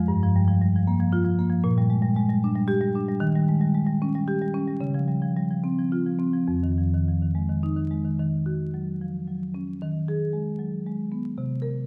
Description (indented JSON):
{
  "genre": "classical, contemporary piece for solo marimba",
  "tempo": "66-80 BPM (dotted quarters)",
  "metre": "6/8",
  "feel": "rubato",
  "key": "F minor, Eb dorian from 8.2 s",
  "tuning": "A4 = 440 Hz",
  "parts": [
    { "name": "marimba with medium hard mallets", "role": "solo", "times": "0.0-11.9 s", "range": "F2 to Bb4", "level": "-25 LUFS", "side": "equal", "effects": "none" }
  ],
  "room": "wet recital hall reverb, RT60 1.3 s",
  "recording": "vinyl crackle",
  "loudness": "-25 LUFS",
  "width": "mono",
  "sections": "0.0-8.2 A section; 8.2-11.9 B section",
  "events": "none",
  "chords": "0.1 Gm7; 1.6 Bb6; 3.2 Eb7; 4.8 Dbmaj7; 6.5 Fm7; 8.2 Ebm9; 9.8 Abm7/Eb",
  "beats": "| 0.10 0.85 | 1.62 2.41 | 3.20 3.99 | 4.78 5.61 | 6.47 7.35 | 8.21 9.02 | 9.81 10.60 | 11.38"
}